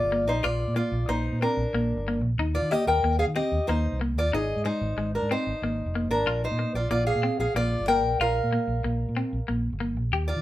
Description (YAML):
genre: highlife guitar band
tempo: 124 BPM (dotted quarters)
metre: 12/8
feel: straight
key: Bb mixolydian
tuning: A4 = 440 Hz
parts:
  - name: fingerpicked acoustic archtop guitar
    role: melody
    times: 0.0-10.4 s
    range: D4 to G5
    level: -26 LUFS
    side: left 1 dB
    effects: none
  - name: fingered electric bass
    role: bass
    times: 0.0-10.4 s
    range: F1 to Eb3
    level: -28 LUFS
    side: equal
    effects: none
  - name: clean electric guitar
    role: accompaniment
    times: 0.1-10.3 s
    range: Ab3 to G4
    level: -30 LUFS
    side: left 1 dB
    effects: none
room: wet small room reverb, RT60 0.6 s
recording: band playing live in one room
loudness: -24 LUFS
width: side -14 dB against mid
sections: 0.0-10.4 A section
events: none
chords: 0.0 Bb; 2.4 Eb; 4.3 Ab; 6.3 Bb5